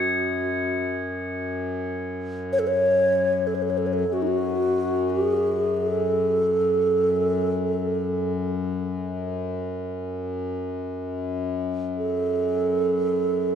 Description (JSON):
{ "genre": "world meditative, free-time meditation music", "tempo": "free time", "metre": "none", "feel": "none", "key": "F# kumoi", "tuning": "A4 = 436 Hz", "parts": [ { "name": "mellow hollow alto flute", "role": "melody", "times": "0.0-13.6 s", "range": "D#4 to C#5", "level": "-22 LUFS", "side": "right 2 dB", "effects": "tape echo" }, { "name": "hand-pumped harmonium", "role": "drone", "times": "0.0-13.6 s", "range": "F#2", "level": "-27 LUFS", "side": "left 4 dB", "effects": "none" }, { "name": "crotales", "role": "texture", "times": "0.0-7.3 s", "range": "D#6 to C#7", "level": "-30 LUFS", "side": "left 1 dB", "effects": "none" } ], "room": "wet church reverb, RT60 3.0 s", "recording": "dark, warm production", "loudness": "-22 LUFS", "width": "side -8 dB against mid", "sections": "0.0-13.6 A section", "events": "none", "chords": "none" }